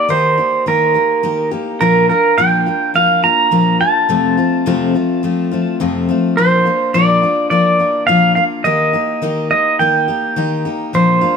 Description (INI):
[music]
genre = country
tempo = 105 BPM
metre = 4/4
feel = straight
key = Bb major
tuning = A4 = 441 Hz
[part]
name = pedal steel guitar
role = melody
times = 0.0-11.4 s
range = Bb4 to Bb5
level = -13 LUFS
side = right 2 dB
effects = none
[part]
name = picked steel-string acoustic guitar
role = accompaniment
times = 0.0-11.4 s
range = F2 to G4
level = -16 LUFS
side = left 4 dB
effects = none
[sound]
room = light reverb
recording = none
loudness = -12 LUFS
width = side -6 dB against mid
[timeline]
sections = 0.0-6.4 A section; 6.4-11.4 B section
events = none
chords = 0.0 Eb; 1.8 Bb; 4.1 F; 6.4 Bb; 8.7 Eb